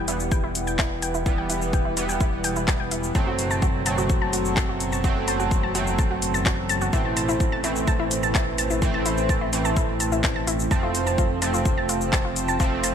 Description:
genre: melodic techno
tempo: 127 BPM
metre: 4/4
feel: straight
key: unclear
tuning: A4 = 441 Hz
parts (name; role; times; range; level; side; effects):
- dark analog pad; sustained chords; 0.1-12.9 s; A3 to C#6; -31 LUFS; left 1 dB; chorus, phaser, sidechain pumping
- analog pluck; arpeggios; 0.0-12.9 s; E4 to A5; -29 LUFS; left 1 dB; chorus, vintage 12-bit sampler grit, sidechain pumping, digital delay
- sync-sweep polysynth; stabs; 0.0-12.9 s; E3 to C4; -27 LUFS; right 3 dB; chorus, sidechain pumping, digital delay
- fat analog bass; bass; 0.0-12.9 s; E1 to A1; -30 LUFS; equal; sidechain pumping
- bowed-like drone; drone; 1.5-12.9 s; E2 to B2; -37 LUFS; equal; none
- techno drum kit; drums; 0.1-12.9 s; handclaps, hi-hat, shaker; -29 LUFS; left 2 dB; none
- electronic kick drum; drums; 0.3-12.7 s; none; -24 LUFS; equal; none
room: moderate lush hall reverb, RT60 2.1 s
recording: bright 1980s-style digital production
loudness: -21 LUFS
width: side -8 dB against mid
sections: 0.0-12.9 A section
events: none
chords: 0.0 Em; 3.1 F#dim; 6.9 Am; 10.7 F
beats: 0.32 0.79 | 1.26 1.73 2.21 2.68 | 3.15 3.62 4.09 4.57 | 5.04 5.51 5.99 6.46 | 6.93 7.40 7.88 8.35 | 8.82 9.29 9.77 10.24 | 10.71 11.18 11.65 12.13 | 12.60

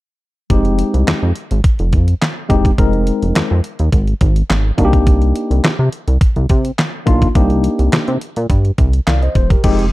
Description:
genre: early-eighties boogie funk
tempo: 105 BPM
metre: 4/4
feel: straight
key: F dorian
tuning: A4 = 440 Hz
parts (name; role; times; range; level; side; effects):
- tine electric piano; accompaniment; 0.5-9.8 s; Ab3 to F5; -17 LUFS; left 2 dB; medium stereo tremolo
- chorused synth bass; bass; 0.5-9.9 s; E1 to C3; -14 LUFS; equal; none
- detuned 8-bit digital drum machine; drums; 0.5-9.9 s; crash cymbal, handclaps, hi-hat, kick drum, snare drum; -15 LUFS; equal; none
room: little or no reverb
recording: dark, warm production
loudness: -12 LUFS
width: side -18 dB against mid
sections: 0.5-9.6 A section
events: none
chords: 0.5 Fm7; 4.8 Cm9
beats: | 0.50 1.07 1.64 2.21 | 2.78 3.35 3.92 4.50 | 5.07 5.64 6.21 6.78 | 7.35 7.92 8.50 9.07 | 9.64

